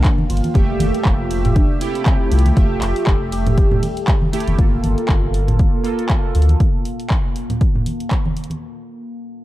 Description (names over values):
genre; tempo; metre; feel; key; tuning
deep house; 119 BPM; 4/4; swing 56% on 16ths; G dorian; A4 = 444 Hz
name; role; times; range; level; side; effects
warm velvety synth lead; melody; 0.0-4.3 s; C4 to G4; -26 LUFS; equal; chorus, tremolo, cassette tape, analog delay
deep dark ambient pad; sustained chords; 0.0-8.6 s; Bb3 to A5; -30 LUFS; left 2 dB; chorus, built-in reverb, sidechain pumping
electronic kick drum; drums; 0.0-8.2 s; none; -17 LUFS; equal; overdrive
punchy analog drum machine; drums; 0.0-8.6 s; handclaps, hi-hat, ride cymbal; -28 LUFS; equal; none
congas; percussion; 0.2-8.6 s; none; -23 LUFS; right 1 dB; none
round analog bass; bass; 0.3-6.5 s; F1 to D2; -18 LUFS; equal; sidechain pumping
chorused polysynth; stabs; 0.5-6.6 s; A3 to E5; -24 LUFS; right 3 dB; vintage 12-bit sampler grit, sidechain pumping, tape echo
room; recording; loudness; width
little or no reverb; dark, warm production; -15 LUFS; side -15 dB against mid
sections
0.0-4.6 A section; 4.6-8.6 B section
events
drop 0.0-4.6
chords
0.0 Gm7; 0.6 Fmaj9; 4.6 Gm9